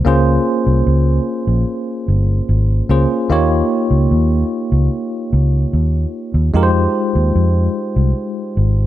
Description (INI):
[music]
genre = contemporary R&B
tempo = 74 BPM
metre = 4/4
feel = straight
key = unclear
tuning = A4 = 438 Hz
[part]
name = bell-like tine electric piano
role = accompaniment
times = 0.0-8.9 s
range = Ab3 to Db5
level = -18 LUFS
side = equal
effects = medium stereo tremolo
[part]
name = vintage muted fingered electric bass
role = bass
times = 0.1-8.9 s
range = G1 to F2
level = -14 LUFS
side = equal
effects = none
[sound]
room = light reverb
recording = dark, warm production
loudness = -13 LUFS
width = side -13 dB against mid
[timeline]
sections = 0.0-8.9 A section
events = none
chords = 0.1 Bbm9; 3.3 Eb9; 6.5 Fm7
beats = | 0.06 0.87 1.68 2.49 | 3.30 4.11 4.92 5.73 | 6.54 7.35 8.16